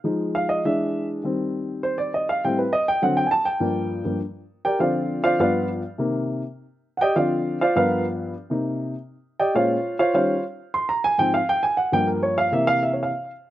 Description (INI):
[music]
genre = jazz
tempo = 202 BPM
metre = 4/4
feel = straight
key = C minor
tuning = A4 = 440 Hz
[part]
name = dark upright piano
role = solo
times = 0.0-13.3 s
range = G2 to C6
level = -20 LUFS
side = equal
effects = none
[sound]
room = little or no reverb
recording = recorded outdoors, with no room sound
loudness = -20 LUFS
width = side -13 dB against mid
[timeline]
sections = 0.0-8.4 A section; 8.4-13.5 A section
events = upright piano solo 0.0-13.5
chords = 0.0 Fm7; 0.6 E7; 1.2 Eb6; 2.4 Am9b5; 3.0 D7; 3.6 Gm7; 4.8 Dm7; 5.4 G7; 6.0 Cm7; 7.2 Dm7; 7.8 G7#9; 8.4 Cm9; 9.6 Bbm9; 10.1 Eb13; 10.7 Ab6; 11.9 Gm7b5; 12.5 C7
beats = | 0.05 0.34 0.64 0.94 | 1.24 1.53 1.83 2.13 | 2.42 2.72 3.02 3.32 | 3.61 3.91 4.21 4.50 | 4.80 5.10 5.39 5.69 | 5.99 6.28 6.58 6.88 | 7.17 7.47 7.77 8.06 | 8.36 8.66 8.96 9.25 | 9.55 9.85 10.14 10.44 | 10.74 11.04 11.34 11.63 | 11.93 12.23 12.53 12.83 | 13.12